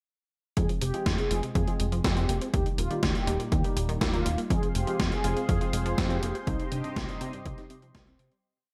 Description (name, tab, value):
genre	italo disco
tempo	122 BPM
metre	4/4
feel	straight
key	F minor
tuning	A4 = 440 Hz
part	mellow synth brass	melody	0.6-8.3 s	C4 to Ab4	-38 LUFS	equal	chorus, delay
part	analog pluck	arpeggios	0.6-8.4 s	G2 to F4	-40 LUFS	equal	chorus, delay
part	tine electric piano	stabs	0.6-8.1 s	C3 to Bb4	-40 LUFS	equal	lush chorus
part	fat analog bass	bass	0.6-8.3 s	Eb1 to C3	-33 LUFS	equal	none
part	electronic kick drum	drums	0.6-8.0 s	none	-32 LUFS	equal	overdrive, studio ambience
part	gated 80s digital drum machine	drums	0.6-8.4 s	hi-hat, snare drum	-36 LUFS	equal	gated reverb, gated reverb snare, studio ambience
part	warm analog pad	sustained chords	4.5-8.4 s	G4 to C6	-40 LUFS	equal	chorus
room	little or no reverb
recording	none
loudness	-28 LUFS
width	mono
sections	0.6-8.4 verse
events	fade-out 5.8-8.4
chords	0.6 Fm; 2.5 Eb; 4.5 Fm; 6.5 Cm